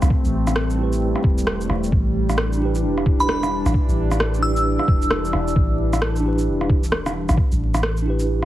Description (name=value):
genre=future garage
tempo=132 BPM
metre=4/4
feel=swing 62% on 16ths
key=unclear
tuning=A4 = 440 Hz
part: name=warbly tape-like pad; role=sustained chords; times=0.0-8.4 s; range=E3 to D4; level=-26 LUFS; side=equal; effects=chorus, built-in reverb, phaser, sidechain pumping
part: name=soft 808-style bass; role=bass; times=0.0-8.4 s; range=E1 to C2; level=-22 LUFS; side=equal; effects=sidechain pumping
part: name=electronic rim click and shaker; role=drums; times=0.0-8.4 s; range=none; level=-24 LUFS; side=equal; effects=none
part: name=electronic kick drum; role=drums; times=0.1-7.5 s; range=none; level=-19 LUFS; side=equal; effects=none
part: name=mellow tine electric piano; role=accompaniment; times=0.8-8.4 s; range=C4 to B4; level=-27 LUFS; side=right 2 dB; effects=medium stereo tremolo, sidechain pumping, tape echo
part: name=glassy synth bell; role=melody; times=3.2-5.1 s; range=B5 to E6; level=-24 LUFS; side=equal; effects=chorus, analog delay
room=moderate digital room reverb, RT60 1.2 s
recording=heavily compressed radio sound, vinyl crackle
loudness=-18 LUFS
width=side -14 dB against mid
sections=0.0-8.4 A section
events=none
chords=0.0 Am9; 1.9 Em7